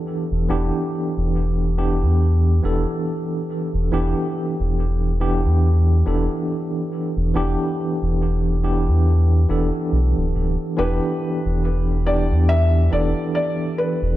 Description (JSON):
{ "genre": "trip hop", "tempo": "70 BPM", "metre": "4/4", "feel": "swing 57% on 16ths", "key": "E minor", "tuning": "A4 = 440 Hz", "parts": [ { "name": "tine electric piano", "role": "accompaniment", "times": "0.0-14.2 s", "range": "E3 to A4", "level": "-22 LUFS", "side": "equal", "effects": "fast stereo tremolo, tape echo" }, { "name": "round analog bass", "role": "bass", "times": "0.3-14.2 s", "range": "D1 to E2", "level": "-18 LUFS", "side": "equal", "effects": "tube saturation" }, { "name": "felt-muted upright piano", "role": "melody", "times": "10.8-14.2 s", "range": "B4 to E5", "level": "-24 LUFS", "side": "equal", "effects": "tape echo" } ], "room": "light reverb", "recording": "none", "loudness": "-18 LUFS", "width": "side -14 dB against mid", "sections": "0.0-14.2 A section", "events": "none", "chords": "0.0 Em7", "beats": "| 0.49 1.35 2.21 3.07 | 3.92 4.78 5.64 6.49 | 7.35 8.21 9.07 9.92 | 10.78 11.64 12.49 13.35" }